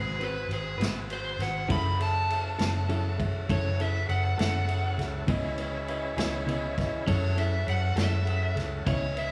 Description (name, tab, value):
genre	slow blues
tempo	67 BPM (dotted quarters)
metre	12/8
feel	straight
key	unclear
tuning	A4 = 440 Hz
part	overdriven slide guitar	melody	0.0-9.3 s	G#4 to B5	-34 LUFS	equal	none
part	clean electric guitar	accompaniment	0.0-9.1 s	C#3 to B4	-38 LUFS	equal	tremolo
part	dark grand piano	accompaniment	0.0-9.3 s	E4 to F#5	-41 LUFS	equal	none
part	tonewheel organ	sustained chords	0.0-9.3 s	B#3 to B4	-41 LUFS	equal	slow rotary speaker
part	vintage muted fingered electric bass	bass	0.0-9.3 s	F#1 to F#2	-32 LUFS	equal	none
part	vintage drum kit	drums	0.2-9.3 s	kick drum, ride cymbal, snare drum	-36 LUFS	equal	none
room	moderate large studio reverb, RT60 1.3 s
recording	band playing live in one room, studio reverb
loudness	-29 LUFS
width	mono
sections	0.0-9.3 A section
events	electric slide guitar solo 0.0-9.3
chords	0.0 G#7#9; 1.7 F#m7; 5.3 C#m7; 7.1 F#m7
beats	0.81 | 1.70 2.60 3.49 4.39 | 5.28 6.18 7.08 7.97 | 8.87